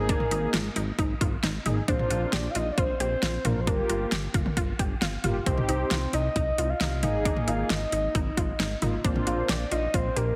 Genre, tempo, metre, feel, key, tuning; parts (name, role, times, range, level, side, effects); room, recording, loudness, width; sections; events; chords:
synth-pop; 134 BPM; 4/4; straight; A4 = 440 Hz
soft octave-layered synth lead; melody; 0.0-10.4 s; Bb4 to F5; -33 LUFS; equal; chorus, phaser, digital delay
mellow synth brass; accompaniment; 0.0-9.5 s; Bb3 to Ab4; -35 LUFS; equal; chorus
resonant blip pluck; arpeggios; 0.0-10.3 s; C4 to G4; -37 LUFS; equal; chorus, digital delay
chorused synth bass; bass; 0.0-10.3 s; G1 to C2; -33 LUFS; equal
pop drum kit; drums; 0.1-10.3 s; hi-hat, kick drum, snare drum, toms; -31 LUFS; equal
moderate scoring stage reverb, RT60 1.9 s; heavily compressed radio sound; -27 LUFS; mono
0.0-10.4 A section
0.0 Absus2; 1.9 Bb; 3.7 Gm7; 5.5 Cm; 7.0 Absus2; 9.0 Bb